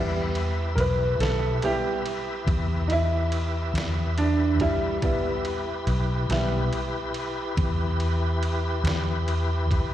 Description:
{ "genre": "slow blues", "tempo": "47 BPM (dotted quarters)", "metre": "12/8", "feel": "straight", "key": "E minor", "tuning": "A4 = 442 Hz", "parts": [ { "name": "bright upright piano", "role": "accompaniment", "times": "0.0-6.7 s", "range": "G3 to B4", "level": "-27 LUFS", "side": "right 2 dB", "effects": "slapback echo" }, { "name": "tonewheel organ", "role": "sustained chords", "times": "0.0-9.9 s", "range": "E4 to E5", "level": "-32 LUFS", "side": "left 1 dB", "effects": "chorus vibrato, fast rotary speaker" }, { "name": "vintage muted fingered electric bass", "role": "bass", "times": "0.0-9.9 s", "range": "B1 to E2", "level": "-25 LUFS", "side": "equal", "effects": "none" }, { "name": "trip hop sampler-style drum kit", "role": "drums", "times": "0.4-9.9 s", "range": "kick drum, ride cymbal, snare drum", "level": "-32 LUFS", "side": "equal", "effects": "overdrive" } ], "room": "digital ambience", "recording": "live gig heard through the venue's PA, recital hall reverb", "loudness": "-23 LUFS", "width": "side -12 dB against mid", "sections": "0.0-9.9 A section", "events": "upright piano solo 0.0-9.9", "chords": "0.0 Em", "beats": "1.20 2.48 3.75 | 5.03 6.31 7.59 8.87" }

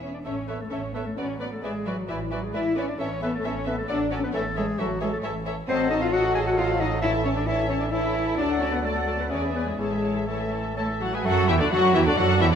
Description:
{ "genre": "quick classical-period movement for symphony orchestra", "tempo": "132 BPM", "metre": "3/4", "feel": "rubato", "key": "A major", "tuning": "A4 = 441 Hz", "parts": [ { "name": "clear clarinet", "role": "second line", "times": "0.0-12.6 s", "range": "D4 to G#5", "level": "-32 LUFS", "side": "left 1 dB", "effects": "none" }, { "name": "muted studio violin section", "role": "second line", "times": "0.0-12.6 s", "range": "D4 to F#5", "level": "-35 LUFS", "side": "left 5 dB", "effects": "none" }, { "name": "muted studio viola section", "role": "accompaniment", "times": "0.0-12.6 s", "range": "D3 to B4", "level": "-35 LUFS", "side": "right 1 dB", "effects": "none" }, { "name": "mellow French horn section", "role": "sustained chords", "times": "0.0-12.6 s", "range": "D3 to G#4", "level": "-29 LUFS", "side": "left 3 dB", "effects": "none" }, { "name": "muted studio cello section", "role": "bass", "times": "0.0-12.6 s", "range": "D3 to G#4", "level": "-31 LUFS", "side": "right 2 dB", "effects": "none" }, { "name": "muted studio double bass section", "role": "bass", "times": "0.0-12.6 s", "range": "A1 to F#2", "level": "-30 LUFS", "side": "right 4 dB", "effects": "none" }, { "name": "mellow cor anglais", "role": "second line", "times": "0.2-12.6 s", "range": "D4 to B4", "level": "-34 LUFS", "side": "right 2 dB", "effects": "none" }, { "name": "muted studio violin section", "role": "melody", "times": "0.3-12.6 s", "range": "D5 to A5", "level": "-33 LUFS", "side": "left 5 dB", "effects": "none" }, { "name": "concert flute", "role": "second line", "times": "0.3-12.6 s", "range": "F#4 to E5", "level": "-35 LUFS", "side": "left 2 dB", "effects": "none" }, { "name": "clear bassoon", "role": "accompaniment", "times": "0.3-12.6 s", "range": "E3 to F#4", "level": "-34 LUFS", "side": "right 2 dB", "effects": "none" } ], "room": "wet recital hall reverb, RT60 1.3 s", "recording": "none", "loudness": "-22 LUFS", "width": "side -8 dB against mid", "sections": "0.2-11.2 A section; 11.2-12.6 B section", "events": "none", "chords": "0.2 A; 1.2 Bm7/A; 1.6 E7/A; 3.0 A; 3.9 D/A; 4.3 A; 5.7 Adim7; 7.0 A; 8.4 D; 9.3 E7; 9.8 A; 11.2 D", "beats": "| 0.25 0.71 1.17 | 1.63 2.09 2.54 | 2.99 3.45 3.89 | 4.34 4.79 5.24 | 5.69 6.13 6.58 | 7.02 7.47 7.92 | 8.38 8.83 9.30 | 9.78 10.27 10.77 | 11.25 11.71 12.17" }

